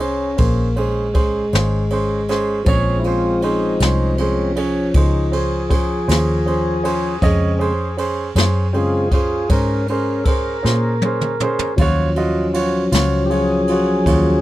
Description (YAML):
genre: slow blues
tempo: 53 BPM (dotted quarters)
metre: 12/8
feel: straight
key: Bb minor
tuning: A4 = 440 Hz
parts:
  - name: clear baby grand piano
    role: accompaniment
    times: 0.0-14.3 s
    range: Db4 to Eb5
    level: -22 LUFS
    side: right 4 dB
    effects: none
  - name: tonewheel organ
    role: sustained chords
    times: 0.0-14.4 s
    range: Db3 to Bb4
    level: -20 LUFS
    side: left 1 dB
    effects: slow rotary speaker
  - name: vintage muted fingered electric bass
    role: bass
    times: 0.0-14.4 s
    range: Ab1 to Bb2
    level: -20 LUFS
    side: equal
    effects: none
  - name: jazz brush drum kit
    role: drums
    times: 0.0-14.2 s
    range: kick drum, ride cymbal, snare drum, toms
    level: -22 LUFS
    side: equal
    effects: none
room: little or no reverb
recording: dry, close 1970s-style studio recording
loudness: -15 LUFS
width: side -15 dB against mid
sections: 0.0-14.4 A section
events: tonewheel organ solo 0.0-14.4; drum fill 10.6-11.8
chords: 0.0 Bbm7; 11.8 Ebm7